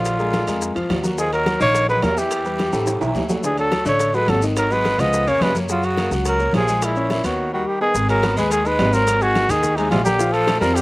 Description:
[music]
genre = Afro-Cuban jazz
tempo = 213 BPM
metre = 4/4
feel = straight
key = unclear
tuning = A4 = 439 Hz
[part]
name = mellow trumpet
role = melody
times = 0.0-10.8 s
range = D#4 to D#5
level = -20 LUFS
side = equal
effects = none
[part]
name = edgy tenor saxophone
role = second line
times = 0.0-10.8 s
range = A#2 to B3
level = -28 LUFS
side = right 2 dB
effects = slapback echo
[part]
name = warm concert grand piano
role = accompaniment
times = 0.0-10.8 s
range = C#3 to G#6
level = -24 LUFS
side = left 2 dB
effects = none
[part]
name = upright bass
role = bass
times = 0.0-10.8 s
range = G#1 to F#2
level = -24 LUFS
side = equal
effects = none
[part]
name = bongos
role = percussion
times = 0.1-10.8 s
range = none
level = -31 LUFS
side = left 4 dB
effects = none
[part]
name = congas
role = percussion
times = 0.1-10.8 s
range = none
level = -27 LUFS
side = equal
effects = none
[part]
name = guiro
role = percussion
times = 0.1-10.8 s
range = none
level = -37 LUFS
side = left 1 dB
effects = none
[part]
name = maracas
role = percussion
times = 0.1-10.8 s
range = none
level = -34 LUFS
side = left 2 dB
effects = none
[part]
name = timbales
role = percussion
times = 0.1-10.8 s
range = none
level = -30 LUFS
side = right 3 dB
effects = none
[sound]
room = little or no reverb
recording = recorded outdoors, with no room sound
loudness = -16 LUFS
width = side -20 dB against mid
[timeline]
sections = 0.0-7.9 A section; 7.9-10.8 B section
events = drum fill 2.7-3.4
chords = 0.1 A#7; 1.2 D#m7; 2.3 Em; 2.9 A5; 3.4 Dmaj7; 4.6 G#m7; 5.1 C#6; 5.7 F#maj9; 6.8 A#m7b5; 7.4 D#aug7; 7.9 G#m7; 9.1 G#9; 10.2 A#5

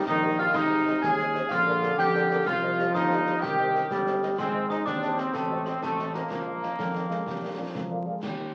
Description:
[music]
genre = military-style march for wind band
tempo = 125 BPM (dotted quarters)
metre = 6/8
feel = straight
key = unclear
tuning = A4 = 440 Hz
[part]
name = mellow cornet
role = melody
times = 0.0-8.5 s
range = G4 to Ab5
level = -39 LUFS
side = equal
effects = none
[part]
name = glockenspiel with hard plastic mallets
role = second line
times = 0.0-8.0 s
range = A5 to Ab6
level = -36 LUFS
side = equal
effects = none
[part]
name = warm euphonium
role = second line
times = 0.0-8.2 s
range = C3 to C4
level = -33 LUFS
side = equal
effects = none
[part]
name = clear trombone section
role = sustained chords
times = 0.1-8.0 s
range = A3 to Ab4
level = -30 LUFS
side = equal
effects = none
[part]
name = warm tuba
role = bass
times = 0.1-8.5 s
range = G1 to F2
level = -37 LUFS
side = equal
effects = none
[part]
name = concert snare drum, concert bass drum and clash cymbals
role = drums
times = 0.1-8.4 s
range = none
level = -40 LUFS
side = equal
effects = none
[part]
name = mellow French horn section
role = accompaniment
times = 0.2-8.4 s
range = Bb3 to F5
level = -39 LUFS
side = equal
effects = none
[sound]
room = wet studio ambience, RT60 0.5 s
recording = very old 78 rpm record, vinyl crackle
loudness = -27 LUFS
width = mono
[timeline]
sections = 0.0-8.2 A section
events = none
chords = 0.0 Eb; 0.5 Ab; 1.5 Bb7; 2.5 Cm; 4.4 Ab; 5.3 Adim7; 6.3 Bbsus4; 7.3 Bb

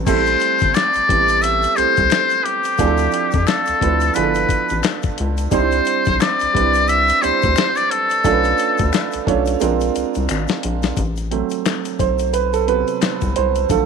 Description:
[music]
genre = R&B, neo-soul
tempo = 88 BPM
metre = 4/4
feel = swing 58% on 16ths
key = unclear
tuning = A4 = 444 Hz
[part]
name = clear upright piano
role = accompaniment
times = 0.0-13.9 s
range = C3 to C#5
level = -20 LUFS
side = right 12 dB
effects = none
[part]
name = rubbery square bass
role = bass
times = 0.0-13.9 s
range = G1 to F2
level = -22 LUFS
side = left 1 dB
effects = none
[part]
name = trumpet with metal mute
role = melody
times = 0.1-9.3 s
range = G4 to E5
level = -17 LUFS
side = left 3 dB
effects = slapback echo
[part]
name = dusty soul sampler-style drum kit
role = drums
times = 0.1-13.9 s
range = crash cymbal, hi-hat, kick drum, snare drum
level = -22 LUFS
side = left 5 dB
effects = none
[part]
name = tube shaker and finger snaps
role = percussion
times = 0.1-13.9 s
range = none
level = -32 LUFS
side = left 16 dB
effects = none
[sound]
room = light reverb, studio reverb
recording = 1960s-style stereo with parts hard left and right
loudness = -15 LUFS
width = side -6 dB against mid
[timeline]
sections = 0.1-11.0 A section; 11.0-13.9 B section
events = drum fill 9.6-11.0; upright piano solo 11.0-13.9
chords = 0.1 Am9; 2.8 Dm9; 4.2 G13; 5.5 Cmaj9; 8.2 Bm7b5; 9.6 Bb9; 11.0 Am69

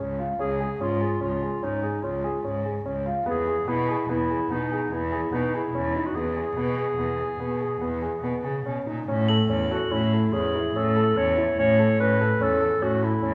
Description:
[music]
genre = contemporary instrumental, chamber music in an uneven meter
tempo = 146 BPM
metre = 7/4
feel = straight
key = unclear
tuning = A4 = 439 Hz
[part]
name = warm baby grand piano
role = arpeggios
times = 0.0-13.3 s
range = B3 to A4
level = -30 LUFS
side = equal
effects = none
[part]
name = rich cello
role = bass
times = 0.0-13.3 s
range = Db2 to Db3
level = -30 LUFS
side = equal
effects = none
[part]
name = warm clarinet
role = melody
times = 0.4-13.3 s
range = Eb4 to C#5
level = -29 LUFS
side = equal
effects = none
[part]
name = crotales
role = texture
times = 9.3-10.1 s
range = Gb7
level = -37 LUFS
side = equal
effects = none
[sound]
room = wet recital hall reverb, RT60 1.5 s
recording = heard from further back in the room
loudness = -25 LUFS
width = mono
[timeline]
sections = 0.0-9.1 A section; 9.1-13.3 B section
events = none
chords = 0.0 Db; 3.3 E; 9.1 A

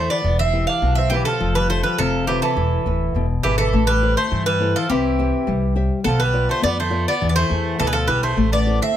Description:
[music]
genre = greek folk, Greek bouzouki band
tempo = 103 BPM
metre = 2/4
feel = straight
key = A minor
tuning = A4 = 440 Hz
[part]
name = Greek bouzouki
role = melody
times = 0.0-9.0 s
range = G4 to F5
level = -21 LUFS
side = right 2 dB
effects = none
[part]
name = Greek bouzouki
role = second line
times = 0.0-9.0 s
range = E3 to D4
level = -26 LUFS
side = right 4 dB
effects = none
[part]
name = nylon-string guitar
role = accompaniment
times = 0.0-9.0 s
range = B2 to E5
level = -23 LUFS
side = left 5 dB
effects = none
[part]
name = upright bass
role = bass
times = 0.0-8.8 s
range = D1 to G2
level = -21 LUFS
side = equal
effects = none
[sound]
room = light reverb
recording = close, detailed microphones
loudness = -17 LUFS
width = side -11 dB against mid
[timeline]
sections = 0.0-3.7 A section; 3.7-9.0 A section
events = none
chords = 0.2 Em; 1.4 F; 2.6 E; 3.7 Am; 4.9 C; 6.0 Bdim; 7.2 E; 8.4 Am

